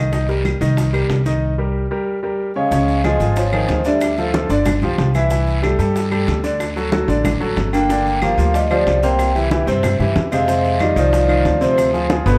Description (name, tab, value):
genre	Afro-Cuban jazz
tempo	185 BPM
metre	4/4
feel	straight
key	C minor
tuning	A4 = 441 Hz
part	clear baby grand piano	accompaniment	0.0-12.4 s	B2 to E5	-22 LUFS	equal	none
part	upright bass	bass	0.0-12.4 s	G1 to G2	-22 LUFS	equal	none
part	bongos	percussion	0.1-12.4 s	none	-32 LUFS	equal	none
part	congas	percussion	0.1-12.4 s	none	-28 LUFS	equal	none
part	guiro	percussion	0.1-12.4 s	none	-36 LUFS	equal	none
part	maracas	percussion	0.1-12.4 s	none	-43 LUFS	equal	none
part	claves	percussion	0.5-11.9 s	none	-34 LUFS	equal	none
part	vibraphone with soft mallets	melody	2.6-4.2, 7.7-12.4 s	B4 to G5	-22 LUFS	equal	none
part	clear tenor saxophone	second line	2.6-4.2, 7.7-12.4 s	D3 to Bb3	-27 LUFS	equal	none
room	moderate large studio reverb, RT60 1.3 s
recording	dark, warm production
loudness	-17 LUFS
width	mono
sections	0.0-2.7 A section; 2.7-12.4 B section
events	break 1.4-2.7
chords	0.1 Cm7; 2.7 Dbmaj9; 4.0 Dmadd11; 4.7 G7; 5.3 C69; 6.6 D; 7.9 Gm7; 9.2 C; 10.5 Fm7; 11.8 Dm7b5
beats	| 0.13 0.45 0.77 1.10 | 1.42 1.75 2.07 2.39 | 2.72 3.04 3.36 3.69 | 4.01 4.33 4.66 4.98 | 5.31 5.63 5.95 6.28 | 6.60 6.92 7.25 7.57 | 7.89 8.22 8.54 8.87 | 9.19 9.51 9.84 10.16 | 10.48 10.81 11.13 11.46 | 11.78 12.10